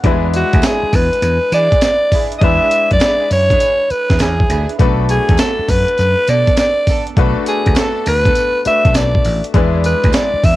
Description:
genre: R&B, new jack swing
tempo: 101 BPM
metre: 4/4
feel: swing 67% on 16ths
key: unclear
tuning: A4 = 441 Hz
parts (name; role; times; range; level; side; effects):
- clear baby grand piano; accompaniment; 0.0-10.6 s; G3 to B4; -22 LUFS; left 8 dB; none
- warm studio string section; stabs; 0.0-10.2 s; B3 to A4; -26 LUFS; right 9 dB; none
- vintage slap bass; bass; 0.0-10.6 s; A1 to E3; -17 LUFS; equal; none
- breakbeat sampler-style drum kit; drums; 0.0-10.6 s; hi-hat, kick drum, snare drum, tambourine; -15 LUFS; equal; cassette tape
- raspy alto saxophone; melody; 0.4-10.6 s; F#4 to E5; -15 LUFS; equal; cassette tape
- group handclap; percussion; 0.6-10.3 s; none; -32 LUFS; right 11 dB; none
room: small room ambience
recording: home recording on cassette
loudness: -11 LUFS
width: side -16 dB against mid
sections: 0.0-10.6 A section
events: none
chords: 0.0 E7; 4.8 Bm7; 9.5 E7

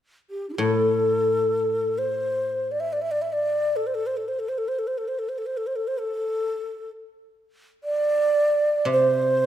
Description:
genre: chinese traditional, Chinese chamber ensemble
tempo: free time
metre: none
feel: none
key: A yu mode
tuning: A4 = 444 Hz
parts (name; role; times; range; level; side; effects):
- breathy mellow xiao; melody; 0.3-9.5 s; D4 to E5; -22 LUFS; equal; none
- guzheng; accompaniment; 0.6-9.5 s; A2 to C3; -26 LUFS; equal; none
room: moderate scoring stage reverb, RT60 1.6 s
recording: none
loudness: -22 LUFS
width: side -11 dB against mid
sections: 0.0-9.5 A section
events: none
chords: none

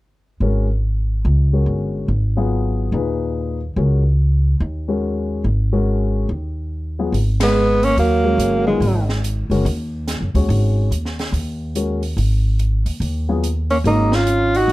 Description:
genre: modal jazz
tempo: 143 BPM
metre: 4/4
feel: swing 65% on 8ths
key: G# dorian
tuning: A4 = 440 Hz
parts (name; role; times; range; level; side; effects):
- dark grand piano; accompaniment; 0.4-14.1 s; A#2 to C#5; -22 LUFS; left 4 dB; none
- upright bass; bass; 0.4-14.7 s; F#1 to F#2; -18 LUFS; equal; none
- open jazz drum kit; drums; 7.1-14.7 s; hi-hat, kick drum, ride cymbal, snare drum; -28 LUFS; right 1 dB; none
- breathy tenor saxophone; melody; 7.4-9.1, 13.7-14.7 s; G#3 to F#4; -17 LUFS; equal; plate reverb
- dark alto saxophone; second line; 7.4-9.1, 13.7-14.7 s; D#3 to D#4; -21 LUFS; right 4 dB; none
room: light reverb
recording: dark, warm production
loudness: -16 LUFS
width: side -18 dB against mid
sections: 0.4-7.1 A section; 7.1-14.7 B section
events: band accent 7.3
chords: 0.4 G#9sus4

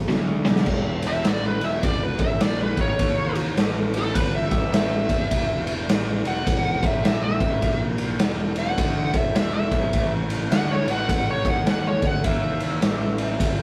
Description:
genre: blues rock power trio and southern rock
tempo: 104 BPM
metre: 4/4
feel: swing 62% on 8ths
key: unclear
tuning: A4 = 441 Hz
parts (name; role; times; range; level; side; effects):
- crunchy overdriven guitar; riff; 0.0-0.6 s; B2 to F#3; -28 LUFS; equal; none
- fuzz picked electric bass; bass; 0.0-13.6 s; E1 to E2; -30 LUFS; equal; overdrive
- raw garage drum kit; drums; 0.1-13.6 s; crash cymbal, kick drum, ride cymbal, snare drum; -25 LUFS; equal; none
- dark smooth lead guitar; melody; 1.1-13.6 s; A4 to F#5; -29 LUFS; equal; wah, overdrive
room: light reverb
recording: rough rehearsal-room recording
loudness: -23 LUFS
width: mono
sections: 0.7-13.6 A section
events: drum fill 0.1-0.7; lead electric guitar solo 0.7-13.6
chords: 0.0 Bm; 0.7 E7sus4; 3.0 A5; 5.3 E5; 9.9 A5

